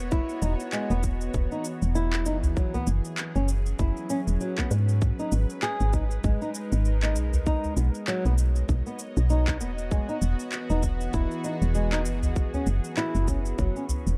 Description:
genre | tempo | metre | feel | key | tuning
organic downtempo | 98 BPM | 4/4 | swing 58% on 16ths | unclear | A4 = 439 Hz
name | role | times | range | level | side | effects
bowed-like drone | sustained chords | 0.0-14.2 s | E3 to D#5 | -37 LUFS | equal | built-in reverb, sidechain pumping
woody FM bass | bass | 0.0-14.2 s | E1 to G#2 | -27 LUFS | equal | sidechain pumping
flamenco guitar | arpeggios | 0.1-13.8 s | F#3 to G#4 | -34 LUFS | equal | tape echo
electronic kick drum | drums | 0.1-13.7 s | none | -30 LUFS | equal | overdrive
electronic shaker and handclaps | drums | 0.1-14.2 s | none | -39 LUFS | equal | overdrive
udu | percussion | 2.4-2.8, 7.3-7.7, 12.2-14.0 s | none | -31 LUFS | equal | none
room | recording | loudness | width
little or no reverb | dark, warm production | -26 LUFS | mono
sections
0.0-14.2 A section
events
none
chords
0.1 Emaj7; 2.6 F#7sus4; 5.0 G#m; 7.5 Bmaj7; 9.9 Emaj7; 12.4 F#7sus4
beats
| 0.12 0.73 1.34 1.95 | 2.57 3.18 3.79 4.40 | 5.02 5.63 6.24 6.85 | 7.46 8.08 8.69 9.30 | 9.91 10.53 11.14 11.75 | 12.36 12.97 13.59

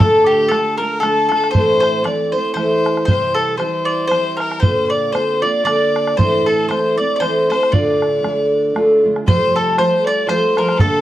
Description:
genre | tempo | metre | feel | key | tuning
celtic folk, Celtic waltz | 117 BPM | 3/4 | swing 56% on 8ths | D minor | A4 = 436 Hz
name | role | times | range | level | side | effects
mandolin | melody | 0.0-11.0 s | G4 to D5 | -19 LUFS | equal | none
clear fiddle | second line | 0.0-11.0 s | G4 to D5 | -20 LUFS | left 2 dB | none
fingerpicked steel-string acoustic guitar | accompaniment | 0.0-11.0 s | D2 to F4 | -18 LUFS | right 1 dB | none
bodhran | percussion | 0.0-10.9 s | none | -18 LUFS | right 1 dB | none
room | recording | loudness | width
moderate small room reverb, RT60 0.5 s | worn, warbling old tape, cassette tape, warbly pitch drift | -14 LUFS | side -13 dB against mid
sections
0.0-9.3 A section; 9.3-11.0 A section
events
none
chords
0.0 Dm; 1.5 Am; 3.1 C; 4.6 Bbadd9; 6.2 Am; 7.7 Dm; 9.3 Fadd9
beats
| 0.00 0.52 1.03 | 1.54 2.06 2.57 | 3.09 3.60 4.12 | 4.63 5.15 5.66 | 6.18 6.69 7.21 | 7.72 8.23 8.75 | 9.26 9.77 10.28 | 10.79

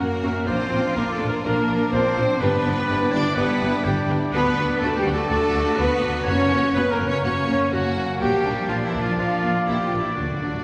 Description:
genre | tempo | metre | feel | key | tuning
cinematic, heroic adventure film score | 124 BPM | 4/4 | straight | unclear | A4 = 440 Hz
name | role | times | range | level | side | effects
rich symphonic violin section | melody | 0.0-10.6 s | D4 to D5 | -35 LUFS | equal | none
bright oboe | second line | 0.0-10.6 s | D4 to D5 | -32 LUFS | equal | none
clear symphonic violin section | second line | 0.0-10.6 s | A#3 to G4 | -35 LUFS | equal | none
small flute group | second line | 0.0-10.6 s | D5 to D6 | -33 LUFS | equal | none
rich studio viola section | accompaniment | 0.0-10.5 s | F#3 to G4 | -34 LUFS | equal | none
mellow French horn section | sustained chords | 0.0-10.6 s | D4 to D5 | -29 LUFS | equal | none
mellow trombone section | sustained chords | 0.0-10.6 s | F3 to D4 | -32 LUFS | equal | none
mellow trumpet section | stabs | 0.0-10.6 s | C#5 to E5 | -34 LUFS | equal | none
rich symphonic cello section | bass | 0.0-10.6 s | D3 to D4 | -29 LUFS | equal | none
warm symphonic double bass section | bass | 0.0-10.5 s | F#1 to F#2 | -29 LUFS | equal | none
timpani | percussion | 10.2-10.6 s | D3 | -32 LUFS | equal | none
room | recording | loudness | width
wet concert hall reverb, RT60 2.2 s | recorded in a church or concert hall, small room ambience | -22 LUFS | mono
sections
0.0-10.6 A section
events
timpani fill 10.2-10.6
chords
0.5 Bb; 2.4 G; 4.3 D; 6.3 F#; 8.2 Bb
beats
| 0.47 0.95 1.44 1.92 | 2.41 2.89 3.37 3.85 | 4.33 4.82 5.30 5.78 | 6.27 6.75 7.24 7.72 | 8.21 8.69 9.18 9.67 | 10.17

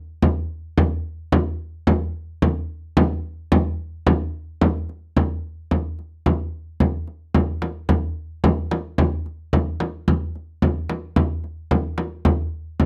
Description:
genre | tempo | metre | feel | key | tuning
medieval | 110 BPM | 2/4 | straight | none | none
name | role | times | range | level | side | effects
frame drum | percussion | 0.2-12.9 s | none | -22 LUFS | equal | none
room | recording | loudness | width
light reverb | dry, close 1970s-style studio recording | -23 LUFS | mono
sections
0.0-4.6 A section; 4.6-12.9 B section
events
none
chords
none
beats
| 0.23 0.77 | 1.32 1.87 | 2.42 2.97 | 3.52 4.06 | 4.61 5.16 | 5.71 6.25 | 6.80 7.34 | 7.89 8.44 | 8.98 9.53 | 10.07 10.62 | 11.16 11.71 | 12.25 12.80

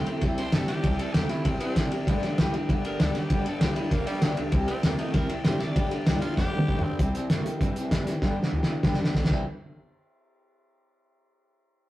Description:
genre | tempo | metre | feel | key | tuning
rockabilly | 195 BPM | 4/4 | straight | C major | A4 = 440 Hz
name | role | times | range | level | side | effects
raspy tenor saxophone | melody | 0.0-9.5 s | Eb3 to D5 | -37 LUFS | equal | slapback echo
picked steel-string acoustic guitar | accompaniment | 0.0-9.4 s | G2 to G4 | -31 LUFS | left 1 dB | none
electric guitar through a small old amp | riff | 0.0-9.4 s | G2 to E4 | -34 LUFS | right 1 dB | tremolo
upright bass | bass | 0.0-9.4 s | F1 to G2 | -35 LUFS | equal | none
cloth-damped thuddy drum kit | drums | 0.1-9.4 s | crash cymbal, hi-hat, kick drum, ride cymbal, snare drum, toms | -25 LUFS | equal | none
room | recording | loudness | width
light reverb | rough rehearsal-room recording, warm saturation | -23 LUFS | side -16 dB against mid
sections
0.0-7.0 A section; 7.0-9.5 B section; 9.5-10.7 C section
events
drum fill 6.4-7.0, 8.2-9.5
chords
0.0 C; 2.1 G; 4.5 C; 5.8 G; 7.0 C; 8.2 G; 9.3 C; 9.5 N.C.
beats
0.23 0.54 | 0.85 1.15 1.46 1.77 | 2.08 2.38 2.69 3.00 | 3.31 3.61 3.92 4.23 | 4.54 4.84 5.15 5.46 | 5.77 6.07 6.38 6.69 | 7.00 7.30 7.61 7.92 | 8.23 8.54 8.84 9.15

